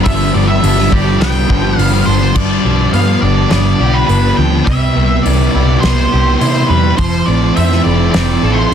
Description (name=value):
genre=rock, shoegaze and dream pop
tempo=104 BPM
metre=4/4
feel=straight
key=G mixolydian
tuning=A4 = 438 Hz
part: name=octave-fuzz lead guitar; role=melody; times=0.0-8.7 s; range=B4 to G5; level=-18 LUFS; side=right 1 dB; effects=distortion, tape echo
part: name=twangy electric guitar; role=arpeggios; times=0.0-8.7 s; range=F3 to A4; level=-24 LUFS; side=right 2 dB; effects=analog chorus, tape echo
part: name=overdriven semi-hollow guitar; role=riff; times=0.0-8.7 s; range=G2 to A4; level=-17 LUFS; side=right 11 dB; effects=reverse reverb
part: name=thick fuzz guitar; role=riff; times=0.0-8.7 s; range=G2 to F4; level=-16 LUFS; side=left 11 dB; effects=distortion, lush chorus
part: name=vintage muted picked electric bass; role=bass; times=0.1-8.7 s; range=F1 to C3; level=-14 LUFS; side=equal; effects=none
part: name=loose indie drum kit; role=drums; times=0.1-8.3 s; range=crash cymbal, hi-hat, kick drum, snare drum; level=-19 LUFS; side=equal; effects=none
room=small room ambience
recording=dense, heavily limited modern master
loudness=-10 LUFS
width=side -8 dB against mid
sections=0.0-2.4 A section; 2.4-8.7 B section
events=none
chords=0.0 G7; 4.7 Cmaj7; 7.0 Fmaj7